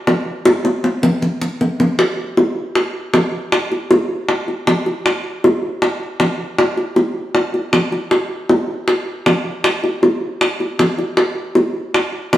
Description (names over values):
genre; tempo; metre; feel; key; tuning
latin; 157 BPM; 4/4; straight; none; none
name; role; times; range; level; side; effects
bongos; percussion; 0.1-12.4 s; none; -15 LUFS; equal; none
room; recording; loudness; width
wet stone room reverb, RT60 1.3 s; band playing live in one room; -15 LUFS; side -13 dB against mid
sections
0.0-2.0 A section; 2.0-12.4 B section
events
drum fill 0.5-2.0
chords
none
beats
0.08 | 0.46 0.84 1.23 1.61 | 1.99 2.37 2.75 3.14 | 3.52 3.90 4.29 4.67 | 5.05 5.43 5.82 6.20 | 6.58 6.96 7.34 7.73 | 8.11 8.49 8.88 9.26 | 9.64 10.03 10.41 10.79 | 11.18 11.56 11.94 12.33